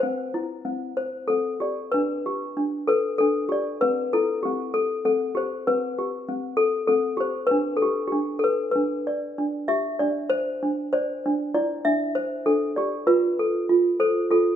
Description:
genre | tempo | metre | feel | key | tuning
children's music, lullaby | 97 BPM | 3/4 | rubato | C major | A4 = 440 Hz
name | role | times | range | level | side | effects
toy piano | solo | 0.0-14.6 s | C4 to E5 | -22 LUFS | left 1 dB | none
room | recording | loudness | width
moderate recital hall reverb, RT60 1.7 s | dark, warm production | -22 LUFS | side -9 dB against mid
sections
0.0-1.9 A section; 1.9-14.6 B section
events
none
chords
0.0 Cadd9; 1.9 G; 3.8 C6; 5.7 Am7; 7.5 G; 9.4 Gsus4; 11.2 Cadd9; 13.1 F

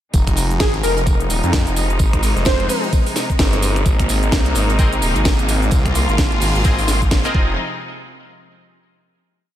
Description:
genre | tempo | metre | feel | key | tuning
bass house | 129 BPM | 4/4 | swing 59% on 16ths | F minor | A4 = 441 Hz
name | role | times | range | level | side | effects
bright studio string section | sustained chords | 0.1-7.6 s | C3 to F4 | -23 LUFS | equal | sidechain pumping, low-pass filter
phased detuned saw bass | bass | 0.1-7.6 s | Eb1 to F2 | -19 LUFS | equal | phaser, tube saturation, sidechain pumping
damped 70s drum kit | drums | 0.1-7.3 s | hi-hat, snare drum, tambourine | -32 LUFS | right 5 dB | none
electronic kick drum | drums | 0.1-7.5 s | none | -17 LUFS | equal | none
house drum kit | drums | 0.1-7.3 s | finger snaps, hi-hat, shaker, snare drum | -23 LUFS | equal | none
plucky unison lead | melody | 0.6-2.8 s | Ab4 to C5 | -23 LUFS | equal | wide subtle chorus, ping-pong delay
band-passed chord stab | stabs | 4.8-7.5 s | C4 to Eb5 | -26 LUFS | left 1 dB | chorus, sidechain pumping, ping-pong delay
room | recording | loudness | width
light reverb, studio reverb | none | -14 LUFS | side -12 dB against mid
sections
0.1-7.6 drop; 7.6-9.4 final hit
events
drop 0.1-7.6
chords
0.1 Fm7; 3.9 Abadd9; 7.3 Fm7; 7.6 N.C.

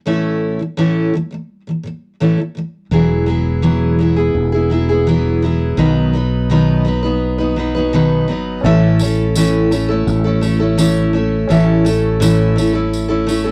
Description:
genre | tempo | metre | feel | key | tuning
acoustic pop | 84 BPM | 4/4 | straight | E major | A4 = 440 Hz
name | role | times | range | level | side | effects
picked steel-string acoustic guitar | accompaniment | 0.1-13.5 s | A2 to B4 | -17 LUFS | equal | cassette tape
fretless electric bass | bass | 2.9-13.5 s | E1 to B1 | -20 LUFS | equal | transformer saturation
clear baby grand piano | accompaniment | 8.6-13.5 s | C#4 to E5 | -28 LUFS | equal | cassette tape
tambourine | percussion | 9.0-13.5 s | none | -31 LUFS | equal | none
room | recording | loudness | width
little or no reverb | home recording on cassette | -15 LUFS | mono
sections
0.0-2.9 A section; 2.9-13.5 B section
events
none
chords
0.0 A; 2.9 Eadd9; 5.8 B; 8.6 A

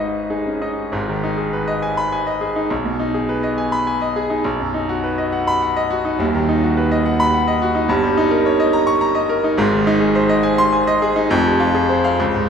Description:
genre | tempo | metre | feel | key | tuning
classical, virtuoso piano study | 69 BPM (dotted quarters) | 6/8 | uneven beats, rubato | G# minor, Ab major from 7.9 s | A4 = 440 Hz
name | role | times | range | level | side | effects
bright concert grand piano | solo | 0.0-12.5 s | D#1 to Db6 | -16 LUFS | equal | none
room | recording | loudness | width
wet church reverb, RT60 2.6 s | recorded in a church or concert hall | -16 LUFS | side -7 dB against mid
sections
0.9-12.5 A section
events
none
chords
0.0 G#m; 2.7 G#m/B; 4.5 B; 6.2 B/D#; 7.9 Eb7/G; 9.6 Ab; 11.3 Fm

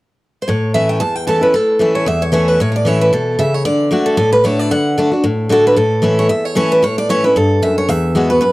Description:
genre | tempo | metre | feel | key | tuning
bluegrass | 227 BPM | 4/4 | swing 56% on 8ths | A mixolydian | A4 = 440 Hz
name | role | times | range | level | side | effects
picked steel-string acoustic guitar | melody | 0.4-8.5 s | A4 to A5 | -15 LUFS | right 1 dB | none
picked steel-string acoustic guitar | accompaniment | 0.5-8.5 s | E2 to F#4 | -15 LUFS | left 1 dB | none
room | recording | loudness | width
studio ambience | dry, close 1970s-style studio recording | -12 LUFS | side -19 dB against mid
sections
0.5-1.5 A section; 1.5-8.5 B section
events
none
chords
0.5 A; 3.6 D; 5.8 A; 7.9 Eadd9

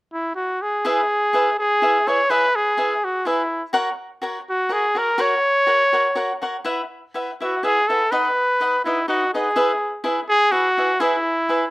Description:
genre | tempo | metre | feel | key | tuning
mexican folk | 124 BPM | 3/4 | swing 53% on 8ths | E major | A4 = 443 Hz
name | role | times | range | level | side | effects
clear trumpet | melody | 0.1-11.7 s | E4 to C#5 | -18 LUFS | equal | slapback echo
cavaquinho | accompaniment | 0.8-11.6 s | D#4 to F#5 | -23 LUFS | equal | slapback echo
room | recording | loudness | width
light reverb | recorded outdoors, with no room sound | -17 LUFS | side -20 dB against mid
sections
0.8-11.7 A section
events
none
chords
0.0 N.C.; 0.8 E; 3.7 F#; 6.7 Bsus4; 8.1 B; 9.6 E

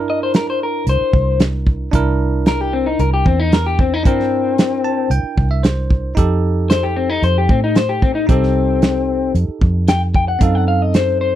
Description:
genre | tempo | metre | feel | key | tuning
straight-eighth soul blues | 113 BPM | 4/4 | straight | C mixolydian | A4 = 442 Hz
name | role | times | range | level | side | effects
bell-like tine electric piano | accompaniment | 0.0-11.4 s | C4 to A5 | -24 LUFS | right 7 dB | none
vintage muted fingered electric bass | bass | 0.0-11.4 s | C2 to A2 | -18 LUFS | equal | none
electric guitar through a small old amp | melody | 0.1-11.4 s | C4 to G5 | -18 LUFS | left 6 dB | none
warm soul drum kit | drums | 0.3-11.1 s | hi-hat, kick drum, snare drum | -15 LUFS | right 1 dB | none
room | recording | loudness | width
little or no reverb | dry, close 1970s-style studio recording | -14 LUFS | side -12 dB against mid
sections
0.0-11.4 A section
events
clean electric guitar solo 0.0-11.4; tine electric piano fill 4.6-6.2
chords
0.0 C9; 6.2 F9; 10.4 F#dim7

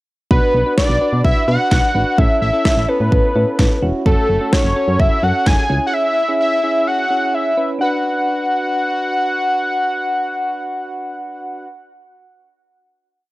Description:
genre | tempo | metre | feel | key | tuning
synth-pop | 128 BPM | 4/4 | straight | B dorian | A4 = 440 Hz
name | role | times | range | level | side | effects
fat analog lead | melody | 0.3-11.7 s | A4 to G#5 | -17 LUFS | equal | none
soft electric-piano-like synth keys | accompaniment | 0.3-11.7 s | C#4 to B4 | -23 LUFS | right 1 dB | chorus, tremolo
solid FM bass | bass | 0.3-5.8 s | E1 to B2 | -18 LUFS | equal | none
pop drum kit | drums | 0.3-5.6 s | kick drum, snare drum | -16 LUFS | equal | none
room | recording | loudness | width
little or no reverb | dry, gritty hardware recording | -14 LUFS | side -18 dB against mid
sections
0.3-7.8 verse; 7.8-11.6 final chord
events
none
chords
0.3 Bm; 2.2 Aadd9; 4.1 F#m; 5.7 C#m; 7.8 Bm

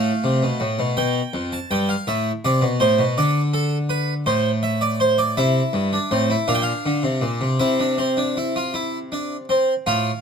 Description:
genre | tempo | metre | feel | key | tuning
classical, baroque-style 3-part fugue for harpsichord | 54 BPM (dotted quarters) | 6/8 | straight | unclear | A4 = 440 Hz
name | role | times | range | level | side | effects
harpsichord | solo | 0.0-10.2 s | F2 to A5 | -18 LUFS | equal | none
room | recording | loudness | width
light reverb | close, detailed microphones | -18 LUFS | side -6 dB against mid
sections
0.0-9.9 A section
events
none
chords
0.0 F/A; 1.0 G7; 2.1 Am; 3.2 D5; 4.3 D5/A; 5.4 Am; 6.5 Bb; 7.6 C

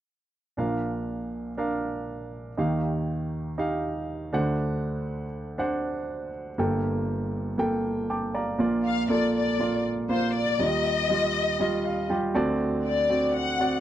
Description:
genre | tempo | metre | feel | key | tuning
pop | 120 BPM | 4/4 | straight | Bb major | A4 = 440 Hz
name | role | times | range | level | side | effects
warm baby grand piano | accompaniment | 0.6-13.8 s | G1 to D6 | -26 LUFS | right 1 dB | none
rich studio violin section | melody | 8.9-13.8 s | C5 to F#5 | -26 LUFS | left 4 dB | none
room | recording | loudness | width
light reverb | dry, close 1970s-style studio recording | -24 LUFS | side -11 dB against mid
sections
0.6-8.6 A section; 8.6-13.8 B section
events
grand piano fill 7.8-8.6, 11.6-12.6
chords
0.6 Bb; 2.6 Ebadd9; 4.3 D7; 6.6 Gmadd9; 8.6 Bb; 10.6 Ebadd9; 12.4 D7

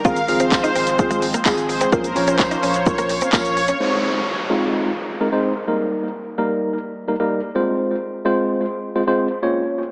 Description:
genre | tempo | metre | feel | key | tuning
dance-pop | 128 BPM | 4/4 | straight | Ab major | A4 = 440 Hz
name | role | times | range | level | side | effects
tine electric piano | accompaniment | 0.0-9.8 s | G3 to Db5 | -20 LUFS | equal | overdrive, fast stereo tremolo, sidechain pumping, analog delay
warm analog pad | sustained chords | 0.0-3.8 s | F3 to Db4 | -27 LUFS | equal | chorus, sidechain pumping
warm sub bass | bass | 0.0-3.7 s | Ab1 to Bb1 | -31 LUFS | equal | sidechain pumping
house drum kit | drums | 0.0-3.8 s | handclaps, hi-hat, kick drum, shaker | -21 LUFS | equal | overdrive, analog delay
supersaw pad | melody | 0.1-3.7 s | Ab4 to F5 | -22 LUFS | equal | analog delay
direct-recorded clean electric guitar | riff | 0.1-3.8 s | Ab3 to F4 | -24 LUFS | equal | analog chorus, analog delay
tambourine | percussion | 0.5-3.4 s | none | -33 LUFS | equal | none
downlifter | sound effects | 3.8-7.5 s | none | -27 LUFS | equal | none
room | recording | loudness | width
wet spring reverb, RT60 1.8 s, digital ambience | echo-heavy mix, small speaker sound | -17 LUFS | side -38 dB against mid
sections
0.0-3.8 A section; 3.8-9.9 B section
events
drop 0.0-3.8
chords
0.1 Fm/Ab; 1.9 Bbm; 3.8 Ab; 5.7 Eb/G; 7.5 Fm/Ab

